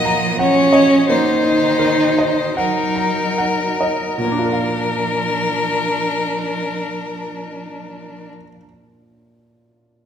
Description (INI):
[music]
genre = classical, slow romantic movement for piano quartet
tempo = 34-45 BPM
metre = 4/4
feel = rubato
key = unclear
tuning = A4 = 440 Hz
[part]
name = rich violin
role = melody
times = 0.0-8.3 s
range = Bb4 to Eb5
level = -20 LUFS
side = left 3 dB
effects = none
[part]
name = warm cello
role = second line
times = 0.0-8.3 s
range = Eb3 to Gb3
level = -26 LUFS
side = right 4 dB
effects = none
[part]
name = warm violin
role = second line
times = 0.0-8.3 s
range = Bb3 to Eb4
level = -20 LUFS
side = equal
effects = none
[part]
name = warm grand piano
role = accompaniment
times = 0.0-10.1 s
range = Bb2 to Bb5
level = -22 LUFS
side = right 2 dB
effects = none
[sound]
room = wet recital hall reverb, RT60 1.6 s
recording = recorded in a church or concert hall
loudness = -15 LUFS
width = side -8 dB against mid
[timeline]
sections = 0.0-4.2 A section; 4.2-10.0 B section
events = slowing down 0.0-4.2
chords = 0.0 Ebm/Bb; 4.2 Bb